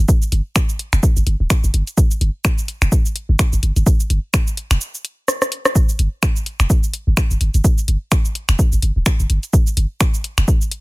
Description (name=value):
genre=minimal techno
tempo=127 BPM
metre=4/4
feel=swing 57% on 16ths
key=unclear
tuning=A4 = 438 Hz
part: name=punchy sub bass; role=bass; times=0.0-10.4 s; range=D1 to G1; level=-15 LUFS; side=equal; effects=sidechain pumping
part: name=electronic kick drum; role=drums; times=0.1-10.6 s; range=none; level=-15 LUFS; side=equal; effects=none
part: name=punchy analog drum machine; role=drums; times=0.1-10.8 s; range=finger snaps, hi-hat, rim click, shaker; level=-21 LUFS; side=equal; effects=none
room=little or no reverb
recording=none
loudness=-15 LUFS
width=side -23 dB against mid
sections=0.0-10.8 A section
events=break 4.8-5.8; drum fill 5.3-5.8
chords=none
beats=| 0.09 0.56 1.03 1.50 | 1.97 2.45 2.92 3.39 | 3.86 4.34 4.81 5.28 | 5.75 6.23 6.70 7.17 | 7.64 8.12 8.59 9.06 | 9.53 10.01 10.48